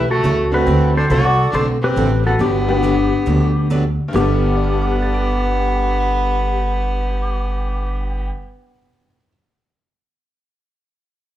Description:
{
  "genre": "country",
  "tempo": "138 BPM",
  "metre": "4/4",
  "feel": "swing 68% on 8ths",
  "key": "G major",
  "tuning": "A4 = 440 Hz",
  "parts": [
    { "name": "clean lap steel guitar", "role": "melody", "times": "0.0-8.3 s", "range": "D4 to D5", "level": "-21 LUFS", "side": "left 3 dB", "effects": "plate reverb, slapback echo" },
    { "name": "bright fiddle", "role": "second line", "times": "0.0-8.3 s", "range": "A3 to F#4", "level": "-22 LUFS", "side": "right 1 dB", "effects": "plate reverb, slapback echo" },
    { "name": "picked steel-string acoustic guitar", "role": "accompaniment", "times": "0.0-8.4 s", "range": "G2 to A4", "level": "-25 LUFS", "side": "right 3 dB", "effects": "plate reverb, slapback echo" },
    { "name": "upright bass", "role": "bass", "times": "0.0-8.3 s", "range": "G1 to D2", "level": "-18 LUFS", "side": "equal", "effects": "none" },
    { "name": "tack piano", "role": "accompaniment", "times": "0.5-9.3 s", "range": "G2 to D7", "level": "-27 LUFS", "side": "left 2 dB", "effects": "plate reverb, slapback echo" }
  ],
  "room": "light reverb",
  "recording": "live gig heard through the venue's PA, club ambience",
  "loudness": "-15 LUFS",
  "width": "side -12 dB against mid",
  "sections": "0.0-4.1 A section; 4.1-7.6 B section",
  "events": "none",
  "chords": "0.0 A; 0.7 D7; 2.4 Gmaj7"
}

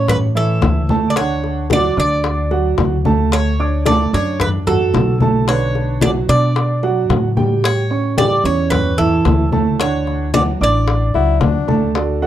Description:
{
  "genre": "latin, Cuban son and guajira",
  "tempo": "111 BPM",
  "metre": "4/4",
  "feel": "straight",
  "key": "D major",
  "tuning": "A4 = 440 Hz",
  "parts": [
    { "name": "Cuban tres", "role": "melody", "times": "0.0-11.4 s", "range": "A4 to D5", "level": "-20 LUFS", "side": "right 1 dB", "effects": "none" },
    { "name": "warm grand piano", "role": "arpeggios", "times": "0.0-12.3 s", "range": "D3 to D6", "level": "-19 LUFS", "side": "right 5 dB", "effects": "tape echo" },
    { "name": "upright bass", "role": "bass", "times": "0.0-12.3 s", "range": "A1 to B2", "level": "-18 LUFS", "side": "left 1 dB", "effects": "none" },
    { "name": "bongos", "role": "percussion", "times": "0.1-12.2 s", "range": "none", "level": "-23 LUFS", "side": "left 8 dB", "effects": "none" },
    { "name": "congas", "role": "percussion", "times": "0.1-12.3 s", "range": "none", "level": "-20 LUFS", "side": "left 3 dB", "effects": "none" },
    { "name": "warm bassoon", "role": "second line", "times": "11.1-11.9 s", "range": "D4 to E4", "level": "-20 LUFS", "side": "left 10 dB", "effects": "none" }
  ],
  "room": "small room ambience",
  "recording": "dry, close 1970s-style studio recording",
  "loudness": "-13 LUFS",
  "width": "side -11 dB against mid",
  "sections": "0.0-12.0 A section",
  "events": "none",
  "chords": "0.0 A; 1.2 D; 5.5 Bm7; 7.6 A7; 9.8 D"
}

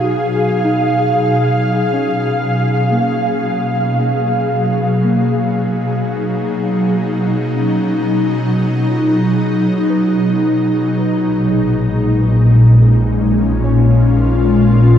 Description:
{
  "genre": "ambient",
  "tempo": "free time",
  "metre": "none",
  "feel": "none",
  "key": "unclear",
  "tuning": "A4 = 441 Hz",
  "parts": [
    { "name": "ethereal airy pad", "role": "sustained chords", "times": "0.0-15.0 s", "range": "A#2 to E#5", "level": "-13 LUFS", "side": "equal", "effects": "ensemble chorus, built-in reverb" },
    { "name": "muted felt-like synth keys", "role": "arpeggios", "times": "0.0-15.0 s", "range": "A#3 to C#5", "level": "-24 LUFS", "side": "left 1 dB", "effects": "chorus, diffuse ambient delay" },
    { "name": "dark chamber double bass section", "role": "bass", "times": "11.3-15.0 s", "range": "A#1", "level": "-15 LUFS", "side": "equal", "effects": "none" }
  ],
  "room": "wet huge ambient reverb, RT60 6.9 s",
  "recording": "none",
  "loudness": "-12 LUFS",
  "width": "side -9 dB against mid",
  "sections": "0.0-11.3 A section; 11.3-15.0 B section",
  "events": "fade-out on synth keys 0.0-11.3",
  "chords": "0.0 G#m9/B; 11.3 A#m7"
}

